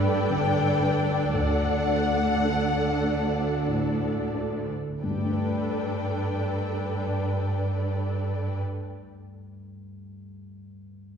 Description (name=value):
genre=cinematic, emotional film score for orchestra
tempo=28-40 BPM (dotted quarters)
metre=6/8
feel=rubato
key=G major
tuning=A4 = 439 Hz
part: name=warm studio violin section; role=melody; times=0.0-8.6 s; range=F#5 to G5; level=-32 LUFS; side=left 4 dB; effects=none
part: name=warm studio violin section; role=second line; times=0.0-8.6 s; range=A4 to D5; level=-32 LUFS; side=left 2 dB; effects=none
part: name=dark concert grand piano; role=accompaniment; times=0.0-11.2 s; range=D2 to D5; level=-31 LUFS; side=left 1 dB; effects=none
part: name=rich studio viola section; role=accompaniment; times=0.0-8.6 s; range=D4 to A4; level=-32 LUFS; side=right 2 dB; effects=none
part: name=rich studio cello section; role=bass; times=0.0-8.6 s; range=D2 to G2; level=-29 LUFS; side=right 2 dB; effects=none
room=wet scoring stage reverb, RT60 1.9 s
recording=heard from further back in the room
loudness=-24 LUFS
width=side -7 dB against mid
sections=0.0-5.0 A section; 5.0-8.9 B section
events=slowing down 0.0-5.0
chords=0.0 Gadd9; 1.3 D; 5.0 Gadd9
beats=| 1.34 3.04 | 5.03 6.95